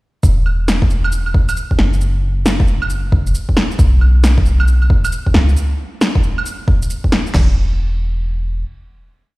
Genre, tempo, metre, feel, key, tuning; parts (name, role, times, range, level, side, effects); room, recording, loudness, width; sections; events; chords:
future garage; 135 BPM; 4/4; swing 64% on 16ths; A4 = 440 Hz
soft 808-style bass; bass; 0.2-8.6 s; E1 to C#2; -14 LUFS; equal; sidechain pumping
deep house drum kit; drums; 0.2-7.5 s; crash cymbal, kick drum, snare drum; -15 LUFS; equal; overdrive
electronic shaker, claves and snare drum; drums; 0.2-7.3 s; -20 LUFS; equal; overdrive
digital ambience; played on a big sound system in a bare room, stone room reverb; -13 LUFS; side -21 dB against mid
0.2-7.3 groove; 7.3-9.4 final note